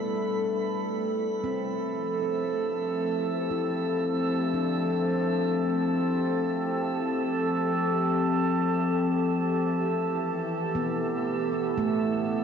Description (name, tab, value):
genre	ambient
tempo	58 BPM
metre	4/4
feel	straight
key	unclear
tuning	A4 = 441 Hz
part	warbly tape-like pad	sustained chords	0.0-12.4 s	E3 to B4	-26 LUFS	left 1 dB	chorus, built-in reverb
part	handpan	arpeggios	0.0-12.4 s	A3 to E4	-34 LUFS	right 3 dB	ping-pong delay
part	organ-like drone	drone	0.0-12.4 s	A3 to E4	-39 LUFS	right 2 dB	ensemble chorus, built-in reverb
part	drifting glass-harmonics texture	texture	0.0-12.4 s	A4 to B5	-32 LUFS	right 2 dB	chorus, built-in reverb
room	wet cathedral reverb, RT60 6.1 s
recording	worn, warbling old tape, cassette tape, warbly pitch drift, nothing above 7.7 kHz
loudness	-25 LUFS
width	side -7 dB against mid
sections	0.0-12.4 A section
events	fade-in on handpan 0.0-12.4; fade-in on synth drone 0.0-12.4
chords	0.0 G; 1.4 Fmaj7; 9.7 Em